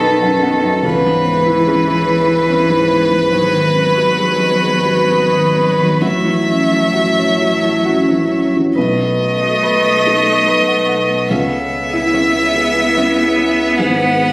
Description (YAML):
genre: neoclassical piano and strings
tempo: 43-49 BPM (dotted quarters)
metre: 6/8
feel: rubato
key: unclear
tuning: A4 = 440 Hz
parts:
  - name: clear violin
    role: melody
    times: 0.0-14.3 s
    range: A4 to F#5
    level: -15 LUFS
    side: equal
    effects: none
  - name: clear cello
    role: second line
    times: 0.0-14.3 s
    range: D#3 to B3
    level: -19 LUFS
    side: equal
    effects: none
  - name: felt-muted upright piano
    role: accompaniment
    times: 0.0-14.3 s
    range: B1 to C#5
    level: -18 LUFS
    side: equal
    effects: none
  - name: glassy FM pad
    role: sustained chords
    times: 0.2-14.3 s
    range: B3 to E5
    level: -27 LUFS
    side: equal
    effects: none
  - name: concert harp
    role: arpeggios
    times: 0.0-14.3 s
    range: C#4 to F#5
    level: -20 LUFS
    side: equal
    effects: slapback echo
  - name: warm sub bass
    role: bass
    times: 0.0-14.3 s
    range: G#1 to C#2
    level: -28 LUFS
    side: equal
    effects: none
room: wet recital hall reverb, RT60 1.5 s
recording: recorded on a phone in the room, studio reverb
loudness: -11 LUFS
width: side -25 dB against mid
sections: 0.0-8.8 A section; 8.8-14.3 B section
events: none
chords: 0.0 B7; 0.8 C#m7; 3.3 G#m7; 6.0 F#m7/A; 8.8 B7; 11.3 C#m7; 13.8 G#m7